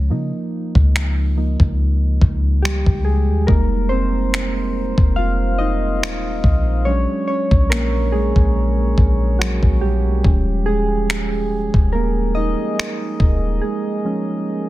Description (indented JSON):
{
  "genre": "contemporary R&B",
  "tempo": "71 BPM",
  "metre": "4/4",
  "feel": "swing 54% on 16ths",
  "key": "unclear",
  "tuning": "A4 = 441 Hz",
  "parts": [
    { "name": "soft electric-piano-like synth keys", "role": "accompaniment", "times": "0.0-14.7 s", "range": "F3 to F5", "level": "-21 LUFS", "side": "right 2 dB", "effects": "chorus" },
    { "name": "soft 808-style bass", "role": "bass", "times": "0.0-13.6 s", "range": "Eb1 to Db3", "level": "-19 LUFS", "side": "equal", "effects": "none" },
    { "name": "dusty soul sampler-style drum kit", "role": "drums", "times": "0.8-13.4 s", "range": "finger snaps, kick drum", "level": "-17 LUFS", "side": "equal", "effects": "soft clipping on snare" }
  ],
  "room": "little or no reverb",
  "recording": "dense, heavily limited modern master",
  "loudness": "-16 LUFS",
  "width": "side -16 dB against mid",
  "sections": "0.0-14.7 A section",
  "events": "synth keys solo 0.0-14.7; break 13.6-14.7",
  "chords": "0.1 Db69; 3.5 Fm11; 6.9 Bb7alt; 10.2 Eb7sus4",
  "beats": "| 0.10 0.95 1.79 2.64 | 3.48 4.33 5.17 6.02 | 6.86 7.71 8.55 9.40 | 10.24 11.09 11.93 12.78 | 13.62 14.47"
}